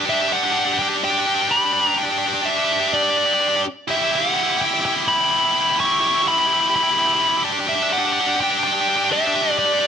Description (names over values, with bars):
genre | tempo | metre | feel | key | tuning
metal | 126 BPM | 4/4 | straight | unclear | A4 = 439 Hz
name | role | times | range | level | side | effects
high-gain distorted guitar | riff | 0.0-9.9 s | D4 to G4 | -19 LUFS | equal | distortion
dark smooth lead guitar | melody | 0.1-9.9 s | D5 to C#6 | -19 LUFS | equal | overdrive
room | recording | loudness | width
light reverb | none | -16 LUFS | side -8 dB against mid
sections
0.0-9.9 A section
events
none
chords
0.0 G5; 3.9 Em; 7.4 G5